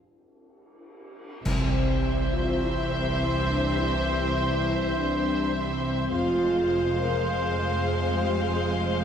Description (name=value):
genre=cinematic, epic orchestral film score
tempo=103 BPM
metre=4/4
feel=straight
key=unclear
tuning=A4 = 441 Hz
part: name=mellow French horn section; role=sustained chords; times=1.4-9.0 s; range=C4 to Bb4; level=-29 LUFS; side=left 1 dB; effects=none
part: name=warm symphonic string section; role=sustained chords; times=1.4-9.0 s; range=Ab3 to F5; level=-36 LUFS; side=left 1 dB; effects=none
part: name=rich studio violin section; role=melody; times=1.5-9.0 s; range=E5 to F5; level=-35 LUFS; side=left 4 dB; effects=none
part: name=rich symphonic violin section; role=second line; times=1.5-9.0 s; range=C5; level=-35 LUFS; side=left 2 dB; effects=none
part: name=rich symphonic viola section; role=accompaniment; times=1.5-9.0 s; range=Ab3 to C4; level=-35 LUFS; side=left 1 dB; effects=none
part: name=warm trombone section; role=sustained chords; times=1.5-9.0 s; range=E3 to Ab3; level=-35 LUFS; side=right 1 dB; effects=none
part: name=bright trumpet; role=stabs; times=1.5-9.0 s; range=C5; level=-32 LUFS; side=equal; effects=none
part: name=rich symphonic cello section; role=bass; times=1.5-9.0 s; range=C2 to F2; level=-34 LUFS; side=right 2 dB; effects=none
part: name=rich symphonic double bass section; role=bass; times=1.5-9.0 s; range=F1 to C2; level=-31 LUFS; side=right 2 dB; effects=none
part: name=clash cymbals and concert bass drum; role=percussion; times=1.5-2.6 s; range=none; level=-32 LUFS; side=equal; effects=none
part: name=timpani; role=percussion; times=1.5-2.3 s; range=C3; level=-32 LUFS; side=equal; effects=none
room=wet scoring stage reverb, RT60 1.6 s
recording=heard from further back in the room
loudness=-23 LUFS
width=side -8 dB against mid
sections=0.0-1.4 A section; 1.4-9.0 B section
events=break 0.0-1.4; band accent 1.4-2.0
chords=0.0 N.C.; 1.4 C; 6.1 Fm